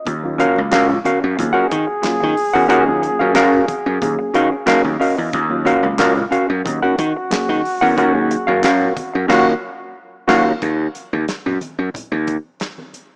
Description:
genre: funk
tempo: 91 BPM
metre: 4/4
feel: straight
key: Eb minor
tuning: A4 = 440 Hz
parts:
  - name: mellow reed electric piano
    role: stabs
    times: 0.0-10.5 s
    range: Gb3 to Eb5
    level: -27 LUFS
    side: equal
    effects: fast tremolo
  - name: gritty slap bass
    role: bass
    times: 0.1-12.4 s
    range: Db2 to Eb3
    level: -22 LUFS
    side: equal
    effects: overdrive
  - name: damped 70s drum kit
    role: drums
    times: 0.1-13.1 s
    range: crash cymbal, handclaps, hi-hat, kick drum, snare drum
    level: -29 LUFS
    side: equal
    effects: none
  - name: congas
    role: percussion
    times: 0.1-13.1 s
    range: none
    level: -37 LUFS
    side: equal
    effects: none
  - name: hollow-body jazz guitar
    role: accompaniment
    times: 0.4-10.5 s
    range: Db4 to Gb5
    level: -19 LUFS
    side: equal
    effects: none
  - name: bright trombone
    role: second line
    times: 1.4-10.5 s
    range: Gb4 to Ab4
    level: -24 LUFS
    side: equal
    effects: none
room: moderate lush hall reverb, RT60 2.4 s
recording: rough home demo mix, small speaker sound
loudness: -17 LUFS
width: mono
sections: 0.0-10.6 A section; 10.6-13.2 B section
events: reed electric piano fill 4.3-5.3; band accent 9.3-10.6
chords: 0.0 Ebm9; 10.6 Ebm

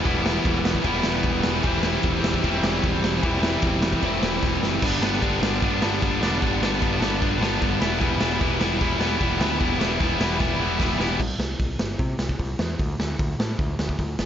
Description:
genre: punk rock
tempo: 151 BPM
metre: 4/4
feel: straight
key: unclear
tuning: A4 = 440 Hz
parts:
  - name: distorted electric guitar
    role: riff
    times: 0.0-11.2 s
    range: G2 to E4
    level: -22 LUFS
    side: equal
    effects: overdrive
  - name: growling picked electric bass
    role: bass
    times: 0.1-14.3 s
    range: E1 to C3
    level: -28 LUFS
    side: equal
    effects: overdrive
  - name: raw garage drum kit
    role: drums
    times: 0.1-14.3 s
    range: crash cymbal, hi-hat, kick drum, ride cymbal, snare drum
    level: -25 LUFS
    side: equal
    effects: none
room: little or no reverb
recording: nothing above 7.5 kHz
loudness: -20 LUFS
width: side -9 dB against mid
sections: 0.0-4.8 A section; 4.8-11.2 B section; 11.2-14.3 C section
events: drum fill 4.4-4.8, 10.4-11.2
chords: 0.0 Em; 1.6 C/E; 4.8 Em; 11.2 N.C.; 12.8 D5

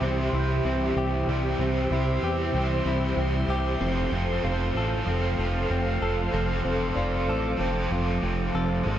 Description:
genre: dream pop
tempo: 95 BPM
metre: 4/4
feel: straight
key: unclear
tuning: A4 = 440 Hz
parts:
  - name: biting overdriven guitar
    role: accompaniment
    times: 0.0-9.0 s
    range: C3 to C5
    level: -30 LUFS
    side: right 2 dB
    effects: harmonic tremolo, wide subtle chorus
  - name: string machine, full ensemble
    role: sustained chords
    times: 0.0-9.0 s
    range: G4 to D6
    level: -30 LUFS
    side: right 1 dB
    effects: ensemble chorus
  - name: direct-recorded clean electric guitar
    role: arpeggios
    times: 0.0-9.0 s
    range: G3 to A4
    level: -32 LUFS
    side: left 4 dB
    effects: wide subtle chorus, digital delay
  - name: fat analog bass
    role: bass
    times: 0.0-9.0 s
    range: F1 to E2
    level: -28 LUFS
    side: equal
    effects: none
  - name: worn celesta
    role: texture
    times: 0.3-1.2, 5.8-7.8 s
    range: D5 to G6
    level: -39 LUFS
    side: left 1 dB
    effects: digital delay
room: moderate lush hall reverb, RT60 1.9 s, digital ambience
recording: dark, warm production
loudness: -23 LUFS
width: side -11 dB against mid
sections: 0.0-9.0 A section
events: none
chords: 0.0 C; 3.8 F

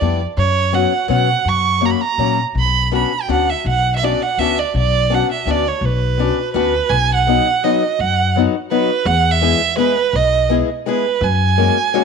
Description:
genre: musette waltz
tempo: 167 BPM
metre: 3/4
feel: straight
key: B harmonic minor, B major from 6.9 s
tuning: A4 = 441 Hz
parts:
  - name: rich violin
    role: melody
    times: 0.0-12.0 s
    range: B4 to C#6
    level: -17 LUFS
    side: right 8 dB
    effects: none
  - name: picked acoustic archtop guitar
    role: accompaniment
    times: 0.0-12.0 s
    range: F#3 to G#4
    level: -19 LUFS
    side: left 16 dB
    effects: none
  - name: upright bass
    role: bass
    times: 0.0-11.7 s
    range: B1 to B2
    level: -19 LUFS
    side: left 2 dB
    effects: none
room: light reverb, studio reverb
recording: 1960s-style stereo with parts hard left and right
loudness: -14 LUFS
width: side -5 dB against mid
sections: 0.0-6.9 A section; 6.9-12.0 B section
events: none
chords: 0.4 F#sus4; 1.5 F#; 2.6 Bmadd9; 6.9 B; 9.1 E; 11.2 F#add9

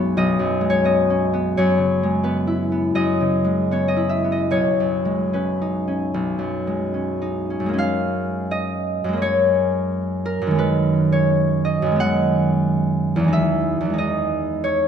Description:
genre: classical, solo harp piece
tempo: 66-93 BPM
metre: 4/4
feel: rubato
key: B major, F# mixolydian from 7.7 s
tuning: A4 = 440 Hz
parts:
  - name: concert harp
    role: solo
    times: 0.0-14.9 s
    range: B1 to G#5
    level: -18 LUFS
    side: equal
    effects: none
room: wet scoring stage reverb, RT60 1.6 s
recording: none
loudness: -18 LUFS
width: side -8 dB against mid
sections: 0.0-7.7 A section; 7.7-14.9 B section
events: none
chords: 0.0 B69; 1.6 F#9sus4; 4.5 B69; 7.7 F#maj9; 10.6 G#m7/F#; 13.3 Emaj7

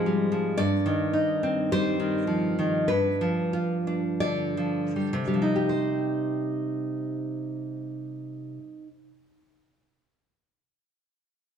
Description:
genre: romantic piece for solo classical guitar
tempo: 38-58 BPM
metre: 4/4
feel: rubato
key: C minor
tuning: A4 = 440 Hz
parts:
  - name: nylon-string guitar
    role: solo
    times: 0.0-9.1 s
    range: G2 to D5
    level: -25 LUFS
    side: equal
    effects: none
room: moderate scoring stage reverb, RT60 1.6 s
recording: dark, warm production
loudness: -24 LUFS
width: side -8 dB against mid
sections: 0.0-5.7 A section; 5.7-11.5 B section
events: slowing down 0.0-5.7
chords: 0.0 Fm/Ab; 0.6 Cm/G; 2.9 G7; 5.7 Cm

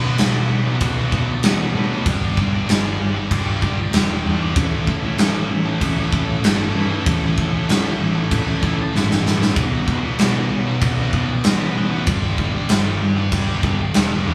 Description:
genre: quiet-loud alternative rock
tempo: 96 BPM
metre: 4/4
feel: straight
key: unclear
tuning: A4 = 440 Hz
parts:
  - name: scooped high-gain guitar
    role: riff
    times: 0.0-14.3 s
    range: G2 to B4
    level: -28 LUFS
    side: equal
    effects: distortion
  - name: thick fuzz guitar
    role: riff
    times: 0.0-14.3 s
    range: G2 to B4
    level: -26 LUFS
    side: equal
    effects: distortion
  - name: growling picked electric bass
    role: bass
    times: 0.0-14.3 s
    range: E1 to A2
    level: -26 LUFS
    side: equal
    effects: overdrive
  - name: big rock drum kit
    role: drums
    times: 0.2-14.1 s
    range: crash cymbal, kick drum, snare drum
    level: -22 LUFS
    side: equal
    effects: none
room: light reverb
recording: band playing live in one room, studio ambience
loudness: -19 LUFS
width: mono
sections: 0.0-14.3 A section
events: drum fill 8.9-9.6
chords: 0.0 Bm; 2.1 G5; 4.6 A; 9.6 Bm; 12.1 G5

